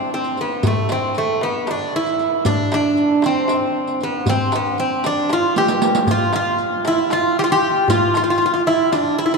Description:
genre	Turkish makam ensemble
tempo	232 BPM (eighths)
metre	7/8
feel	straight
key	unclear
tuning	A4 = 440 Hz
part	Greek bouzouki	melody	0.0-9.4 s	A3 to G4	-17 LUFS	right 1 dB	none
part	darbuka	percussion	0.2-9.4 s	none	-26 LUFS	left 3 dB	none
part	riq	percussion	0.2-9.4 s	none	-27 LUFS	right 6 dB	none
room	wet cathedral reverb, RT60 5.4 s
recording	in a vast, echoing space, small room reverb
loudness	-16 LUFS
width	side -3 dB against mid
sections	0.0-9.4 A section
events	drum fill 5.6-6.1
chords	none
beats	0.12 0.38 | 0.64 0.90 1.16 1.41 1.67 1.93 2.19 | 2.45 2.71 2.97 3.23 3.49 3.75 4.00 | 4.26 4.52 4.78 5.04 5.30 5.56 5.82 | 6.08 6.33 6.59 6.85 7.11 7.37 7.63 | 7.89 8.15 8.41 8.67 8.93 9.18

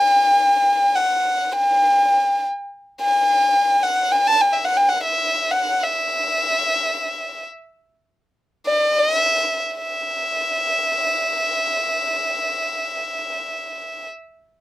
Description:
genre	Arabic maqam ensemble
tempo	free time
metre	none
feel	none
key	unclear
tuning	A4 = 439 Hz
part	dark violin	solo	0.0-14.1 s	D#5-49c to A5	-17 LUFS	equal	none
room	light reverb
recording	none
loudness	-17 LUFS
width	side -15 dB against mid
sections	0.0-9.8 A section; 9.8-13.6 B section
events	slowing down 6.4-9.8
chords	none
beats	free time

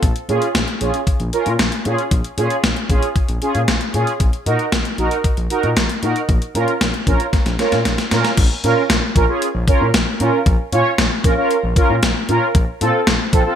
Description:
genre	synth-pop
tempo	115 BPM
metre	4/4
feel	straight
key	Bb minor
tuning	A4 = 438 Hz
part	smooth gliding synth bass	bass	0.0-13.4 s	Bb1 to Bb2	-21 LUFS	left 1 dB	none
part	gated 80s digital drum machine	drums	0.0-13.5 s	crash cymbal, hi-hat, kick drum, snare drum	-17 LUFS	left 1 dB	gated reverb, gated reverb snare
part	mellow synth brass	accompaniment	0.3-13.6 s	C4 to Db5	-19 LUFS	right 2 dB	chorus
room	moderate plate reverb, RT60 1.3 s, digital ambience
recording	bright 1980s-style digital production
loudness	-15 LUFS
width	side -9 dB against mid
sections	0.0-8.4 A section; 8.4-13.6 B section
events	drum fill 7.3-8.4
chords	0.0 Db/Bb; 4.2 Ebm/Bb; 6.3 Bbm; 12.5 F/Bb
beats	| 0.03 0.55 1.07 1.59 | 2.11 2.63 3.16 3.68 | 4.20 4.72 5.24 5.77 | 6.29 6.81 7.33 7.85 | 8.37 8.90 9.42 9.94 | 10.46 10.98 11.51 12.03 | 12.55 13.07

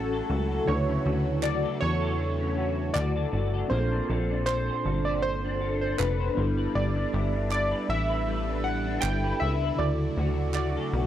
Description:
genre	indie pop, bedroom pop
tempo	79 BPM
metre	4/4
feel	swing 55% on 16ths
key	D major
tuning	A4 = 440 Hz
part	warm analog keys	melody	0.0-11.1 s	A4 to G5	-30 LUFS	equal	lush chorus, slapback echo
part	electric guitar through a small old amp	accompaniment	0.0-11.1 s	D3 to C5	-34 LUFS	left 4 dB	ensemble chorus, vibrato effect
part	mellow tine electric piano	accompaniment	0.0-11.1 s	C#3 to B4	-35 LUFS	right 3 dB	medium stereo tremolo
part	phased analog pad	sustained chords	0.0-11.1 s	Bb2 to B4	-35 LUFS	equal	phaser, chorus
part	plucky analog bass	bass	0.0-11.1 s	F1 to E2	-28 LUFS	equal	none
part	group handclap	percussion	1.4-10.7 s	none	-36 LUFS	right 10 dB	none
room	little or no reverb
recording	dark, warm production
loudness	-25 LUFS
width	side -11 dB against mid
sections	0.0-11.1 A section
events	none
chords	0.0 Dmaj7; 3.7 Bbmaj9; 6.4 G6; 9.8 Dmaj7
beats	| 0.68 1.44 2.19 2.95 | 3.71 4.47 5.23 5.99 | 6.75 7.51 8.27 9.03 | 9.79 10.55

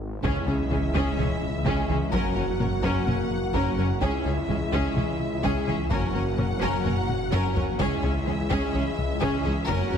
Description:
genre	cinematic, hybrid orchestral and electronic film score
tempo	127 BPM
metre	4/4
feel	straight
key	unclear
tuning	A4 = 440 Hz
part	wide detuned saw bass	bass	0.0-10.0 s	Gb1 to Db2	-33 LUFS	equal	chorus
part	clear symphonic violin section	melody	0.2-10.0 s	Fb5 to Gb5	-37 LUFS	left 3 dB	none
part	rich studio violin section	second line	0.2-10.0 s	Ab4 to Bb4	-33 LUFS	left 4 dB	none
part	rich symphonic viola section	accompaniment	0.2-10.0 s	Db4	-31 LUFS	right 2 dB	none
part	warm French horn section	sustained chords	0.2-10.0 s	Ab3 to Gb4	-32 LUFS	left 3 dB	none
part	thumb-piano-like synth pluck	arpeggios	0.2-10.0 s	Db3 to Gb4	-34 LUFS	right 2 dB	chorus, ping-pong delay
part	plucky analog bass	riff	0.2-10.0 s	Db2 to Gb2	-31 LUFS	left 2 dB	none
part	rich symphonic cello section	bass	0.2-10.0 s	Db2 to Db3	-34 LUFS	right 4 dB	none
part	rich symphonic double bass section	bass	0.2-10.0 s	Gb1 to Db2	-33 LUFS	right 4 dB	none
part	taiko ensemble	drums	0.2-10.0 s	none	-33 LUFS	equal	none
part	sub drop	sound effects	0.3-2.1 s	none	-36 LUFS	equal	none
room	wet scoring stage reverb, RT60 1.6 s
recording	heavily compressed radio sound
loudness	-23 LUFS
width	side -8 dB against mid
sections	0.2-10.0 A section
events	break 0.0; drum fill 0.0, 7.1-7.8; impact 0.2-2.1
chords	0.2 Dbm; 2.1 Gb; 4.0 Dbm; 5.9 Gb; 7.8 Dbm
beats	| 0.24 0.71 1.18 1.65 | 2.13 2.60 3.07 3.54 | 4.01 4.49 4.96 5.43 | 5.91 6.38 6.85 7.32 | 7.79 8.27 8.74 9.21 | 9.69

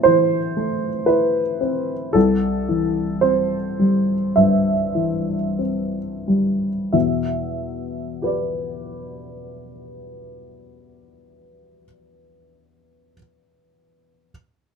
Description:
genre	neoclassical minimalist piano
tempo	43-59 BPM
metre	4/4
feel	rubato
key	E minor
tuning	A4 = 440 Hz
part	dark upright piano	solo	0.0-14.3 s	C2 to E5	-18 LUFS	equal	none
room	moderate small room reverb, RT60 0.5 s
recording	minimal, uncompressed stereo recording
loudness	-18 LUFS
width	side -6 dB against mid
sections	0.0-6.9 A section; 6.9-12.1 B section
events	slowing down 0.0-6.9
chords	0.0 Am; 2.1 C; 6.9 Em7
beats	0.06 1.08 | 2.15 3.23 4.37 5.60 | 6.94 8.23 9.50 10.77

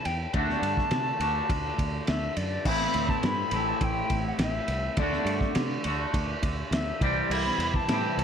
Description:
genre	psychedelic rock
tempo	104 BPM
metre	4/4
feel	straight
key	A dorian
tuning	A4 = 440 Hz
part	silver concert flute	melody	0.0-8.2 s	D5 to B5	-32 LUFS	left 2 dB	tape echo
part	twangy electric guitar	riff	0.0-8.2 s	A2 to G4	-30 LUFS	equal	phaser, double-tracked left and right
part	fingered electric bass	bass	0.1-8.2 s	A1 to C3	-32 LUFS	equal	none
part	cloth-damped thuddy drum kit	drums	0.1-8.2 s	crash cymbal, kick drum, ride cymbal, snare drum	-30 LUFS	equal	none
room	light reverb, small room ambience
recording	none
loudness	-25 LUFS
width	side -8 dB against mid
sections	0.0-2.7 A section; 2.7-8.2 A section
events	none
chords	0.4 D; 2.7 Am; 5.0 D; 7.0 C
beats	| 0.35 0.93 1.51 2.09 | 2.67 3.25 3.82 4.40 | 4.98 5.56 6.14 6.72 | 7.30 7.88

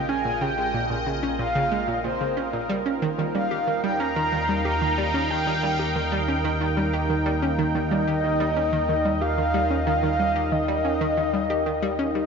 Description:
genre	ambient, sequencer-driven space music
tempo	92 BPM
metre	4/4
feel	straight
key	unclear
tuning	A4 = 439 Hz
part	breathy flute-like synth lead	melody	0.0-12.3 s	C5 to Bb5	-26 LUFS	equal	analog chorus, ping-pong delay
part	sweeping resonant pad	sustained chords	0.0-12.3 s	Bb3 to G5	-27 LUFS	right 2 dB	chorus
part	analog pluck	riff	0.0-12.2 s	Bb2 to G4	-27 LUFS	right 1 dB	chorus, ping-pong delay
part	analog drone	bass	0.0-12.3 s	Bb1 to Eb2	-30 LUFS	equal	chorus
room	wet huge ambient reverb, RT60 8.1 s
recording	nothing above 7.5 kHz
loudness	-21 LUFS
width	side -5 dB against mid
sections	0.0-12.3 A section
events	fade-in on analog synth pad 0.0-12.3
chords	0.0 Bbmadd9; 2.7 Eb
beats	| 0.09 0.74 1.39 2.04 | 2.69 3.35 4.00 4.65 | 5.30 5.96 6.61 7.26 | 7.91 8.56 9.22 9.87 | 10.52 11.17 11.82

